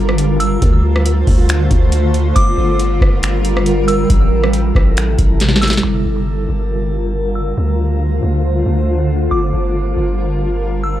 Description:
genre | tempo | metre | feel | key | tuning
hip hop, atmospheric cloud-rap | 138 BPM | 4/4 | half-time | G dorian | A4 = 442 Hz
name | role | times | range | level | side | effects
delicate synth tine bell | melody | 0.0-11.0 s | D6 to E6 | -25 LUFS | equal | chorus, low-pass filter, tape echo
granular cloud pad | sustained chords | 0.0-11.0 s | C3 to C5 | -18 LUFS | equal | built-in reverb, sidechain pumping, low-pass filter
long sustained 808-style bass | bass | 0.0-11.0 s | G1 to D2 | -16 LUFS | equal | none
booming analog drum machine | drums | 0.1-5.9 s | finger snaps, hi-hat, kick drum, rim click, snare drum | -15 LUFS | equal | none
room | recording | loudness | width
little or no reverb | dry, gritty hardware recording | -12 LUFS | side -13 dB against mid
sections
0.0-5.8 A section; 5.8-11.0 B section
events
drum fill 5.4-5.8; filter sweep 5.8-11.0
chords
0.0 Gm7; 0.6 Dm7; 2.4 Gm7; 4.1 Am7; 5.8 Gm7; 7.6 Dm7; 9.3 Gm7

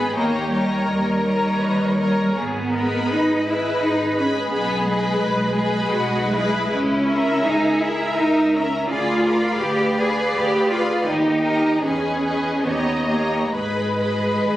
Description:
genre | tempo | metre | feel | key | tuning
classical, slow romantic movement for string orchestra | 65-88 BPM | 3/4 | rubato | G# minor | A4 = 441 Hz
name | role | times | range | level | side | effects
rich studio violin section | melody | 0.0-14.6 s | E4 to D#5 | -27 LUFS | left 1 dB | none
warm studio violin section | second line | 0.0-14.6 s | D#5 to B5 | -28 LUFS | left 2 dB | none
rich studio viola section | accompaniment | 0.0-14.6 s | G4 to E5 | -25 LUFS | equal | none
rich studio cello section | bass | 0.0-14.6 s | G3 to Ab4 | -21 LUFS | equal | none
rich studio double bass section | bass | 0.0-14.6 s | G#1 to E2 | -28 LUFS | equal | none
room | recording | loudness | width
light reverb | recorded on a phone in the room, club reverb, compression | -18 LUFS | side -14 dB against mid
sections
0.0-14.6 A section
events
none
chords
0.2 D#7; 2.4 G#m; 4.5 G#m/B; 6.7 A#dim/C#; 8.9 Ddim7; 11.1 D#; 11.8 Emaj7; 12.6 D#7; 13.5 G#m

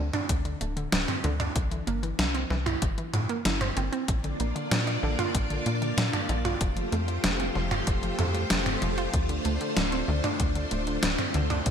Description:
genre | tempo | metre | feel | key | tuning
synthwave | 95 BPM | 4/4 | straight | unclear | A4 = 440 Hz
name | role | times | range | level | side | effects
analog pluck | arpeggios | 0.0-11.6 s | D3 to F4 | -33 LUFS | right 3 dB | chorus, digital delay
tight sequencer bass | bass | 0.0-11.7 s | D1 to Bb2 | -30 LUFS | equal | none
gated 80s digital drum machine | drums | 0.1-11.7 s | hi-hat, snare drum, toms | -29 LUFS | equal | gated reverb, gated reverb snare, overdrive
electronic kick drum | drums | 0.3-11.7 s | none | -29 LUFS | equal | none
string machine, full ensemble | sustained chords | 4.1-11.7 s | A3 to D5 | -31 LUFS | left 1 dB | ensemble chorus, sidechain pumping
room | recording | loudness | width
moderate plate reverb, RT60 2.7 s | bright 1980s-style digital production | -25 LUFS | side -8 dB against mid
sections
0.0-11.7 A section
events
none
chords
0.0 D5; 1.6 C; 4.1 Bb; 6.6 Fadd9; 9.1 Dm7

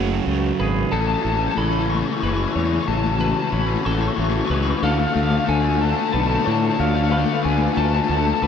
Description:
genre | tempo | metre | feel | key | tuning
post-rock | 61 BPM (dotted quarters) | 6/8 | straight | A major | A4 = 443 Hz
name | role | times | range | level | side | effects
phased analog pad | sustained chords | 0.0-8.5 s | C#3 to G#5 | -29 LUFS | equal | phaser, chorus
twangy electric guitar | arpeggios | 0.0-8.5 s | A2 to G#4 | -30 LUFS | left 2 dB | wide subtle chorus, ping-pong delay
sludgy distorted guitar | riff | 0.0-0.9 s | F#2 to F#3 | -25 LUFS | right 9 dB | overdrive
fuzz fingered electric bass | bass | 0.0-8.5 s | F#1 to A2 | -22 LUFS | equal | overdrive
twelve-string electric guitar | arpeggios | 0.6-8.5 s | A4 to C#5 | -31 LUFS | right 2 dB | ping-pong delay
electric guitar through a small old amp | melody | 0.9-8.5 s | F5 to C#6 | -24 LUFS | left 2 dB | harmonic tremolo, ping-pong delay
overdriven electric guitar | riff | 0.9-8.5 s | A2 to A3 | -24 LUFS | left 11 dB | wide subtle chorus
room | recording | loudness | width
moderate plate reverb, RT60 2.3 s | dreamy mix soaked in reverb | -18 LUFS | side -7 dB against mid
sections
0.9-8.5 A section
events
build-up 0.9-8.5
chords
0.0 F#madd9; 0.9 Amaj7; 4.8 Dm

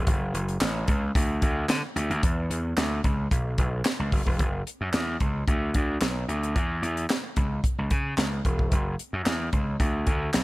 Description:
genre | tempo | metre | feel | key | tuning
early-eighties boogie funk | 111 BPM | 4/4 | straight | F# minor | A4 = 440 Hz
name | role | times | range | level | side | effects
gritty slap bass | bass | 0.0-10.4 s | E1 to D3 | -26 LUFS | equal | overdrive
tight funk drum kit | drums | 0.1-10.4 s | handclaps, hi-hat, kick drum, snare drum | -26 LUFS | equal | none
room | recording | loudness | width
little or no reverb | none | -24 LUFS | side -20 dB against mid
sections
0.0-4.4 A section; 4.4-10.4 B section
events
none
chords
none

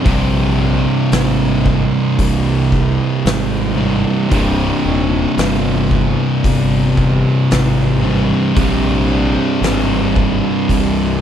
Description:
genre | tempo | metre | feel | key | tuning
stoner and doom metal | 56 BPM | 4/4 | straight | unclear | A4 = 440 Hz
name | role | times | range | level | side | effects
fuzz guitar | riff | 0.0-11.2 s | C2 to C3 | -19 LUFS | right 1 dB | distortion
thick fuzz guitar | riff | 0.0-11.2 s | C2 to C3 | -19 LUFS | left 7 dB | distortion
thick fuzz guitar | riff | 0.0-11.2 s | C2 to C3 | -18 LUFS | right 6 dB | distortion
fuzz fingered electric bass | bass | 0.1-11.2 s | C1 to C2 | -20 LUFS | equal | overdrive
oversized low-tuned drum kit | drums | 0.1-10.9 s | hi-hat, kick drum, snare drum | -21 LUFS | equal | none
room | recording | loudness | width
little or no reverb | none | -12 LUFS | side -9 dB against mid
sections
0.0-11.2 A section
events
none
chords
0.0 C5

